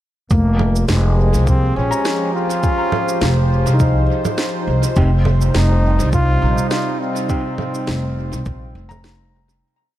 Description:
ambient dub; 103 BPM; 4/4; swing 56% on 16ths; F minor; A4 = 440 Hz
clear trombone; melody; 0.3-8.7 s; Ab3 to F4; -23 LUFS; left 1 dB; tape echo
warm analog pad; sustained chords; 0.3-9.6 s; C3 to C5; -24 LUFS; right 1 dB; chorus
upright bass; bass; 0.3-9.6 s; F1 to C2; -15 LUFS; equal; tube saturation
electronic kick drum; drums; 0.3-8.6 s; -19 LUFS; equal; small room ambience
electronic shaker, congas and snare drum; drums; 0.3-9.6 s; -25 LUFS; right 2 dB; small room ambience, dub echo
felt-muted upright piano; arpeggios; 1.9-10.0 s; Eb4 to Bb5; -28 LUFS; left 2 dB; low-pass filter, tape echo
mellow electric guitar; stabs; 5.0-7.4 s; C4 to G4; -29 LUFS; right 1 dB
light reverb, small room ambience; -14 LUFS; side -13 dB against mid
0.3-9.6 groove
fade-out 6.5-9.6
0.3 Fm7; 5.0 Cm/F

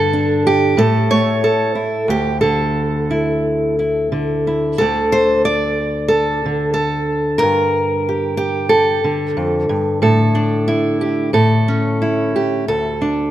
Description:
folk, solo fingerstyle acoustic guitar; 92 BPM; 4/4; rubato; A4 = 440 Hz
fingerpicked steel-string acoustic guitar; solo; 0.0-13.3 s; D2 to D5; -14 LUFS; equal
moderate concert hall reverb, RT60 2.0 s; close, detailed microphones; -14 LUFS; side -12 dB against mid
0.0-4.8 A section; 4.8-13.3 B section
0.0 Gsus2; 0.8 A; 2.1 Dsus2; 4.8 N.C.; 7.4 Gmadd9; 10.0 Asus4; 11.3 A; 12.7 D5

